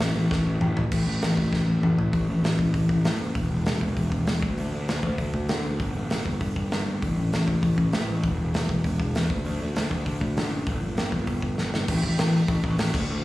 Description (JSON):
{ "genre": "punk rock", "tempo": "197 BPM", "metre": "4/4", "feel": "straight", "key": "unclear", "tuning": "A4 = 440 Hz", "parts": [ { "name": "fuzz picked electric bass", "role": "bass", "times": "0.0-13.2 s", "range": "E1 to D3", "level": "-24 LUFS", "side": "equal", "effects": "overdrive" }, { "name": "big rock drum kit", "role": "drums", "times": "0.0-13.0 s", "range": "crash cymbal, hi-hat, kick drum, snare drum, toms", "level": "-28 LUFS", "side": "equal", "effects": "none" } ], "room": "little or no reverb", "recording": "live gig heard through the venue's PA, club reverb, small room ambience", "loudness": "-22 LUFS", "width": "side -17 dB against mid", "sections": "0.9-2.1 A section; 2.1-11.9 B section; 11.9-13.2 C section", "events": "drum fill 0.3-0.9, 1.5-2.1, 11.6-11.9", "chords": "none" }